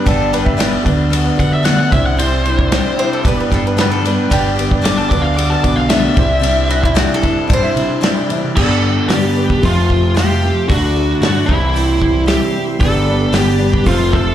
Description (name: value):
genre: folk rock and heartland rock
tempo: 113 BPM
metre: 4/4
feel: straight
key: unclear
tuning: A4 = 440 Hz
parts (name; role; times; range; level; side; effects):
- bowl-back mandolin; second line; 0.0-8.4 s; E4 to C5; -22 LUFS; equal; slapback echo
- bright grand piano; accompaniment; 0.0-8.2, 12.8-14.3 s; E4 to E5; -24 LUFS; right 2 dB; slapback echo
- picked twelve-string acoustic guitar; accompaniment; 0.0-14.3 s; G2 to A4; -21 LUFS; left 4 dB; slapback echo
- bright tonewheel organ; sustained chords; 0.0-14.3 s; G3 to D6; -27 LUFS; equal; slow rotary speaker, overdrive
- electric guitar at the edge of break-up; riff; 0.0-14.3 s; F2 to G4; -19 LUFS; right 2 dB; slapback echo
- fingered electric bass; bass; 0.1-14.3 s; F1 to D3; -19 LUFS; equal; none
- natural country drum kit; drums; 0.1-14.3 s; crash cymbal, hi-hat, kick drum, ride cymbal, snare drum; -18 LUFS; equal; none
- biting lead guitar; melody; 1.4-14.3 s; E4 to D6; -19 LUFS; left 1 dB; overdrive
room: light reverb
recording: live gig heard through the venue's PA, club reverb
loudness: -12 LUFS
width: side -11 dB against mid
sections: 0.0-8.6 A section; 8.6-14.3 B section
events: lead electric guitar solo 0.0-8.6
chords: 0.0 G; 0.9 D6; 1.9 Cadd9; 3.3 G; 5.1 D6; 6.2 Cadd9; 8.6 G; 9.6 F; 10.7 D; 11.5 C; 12.8 G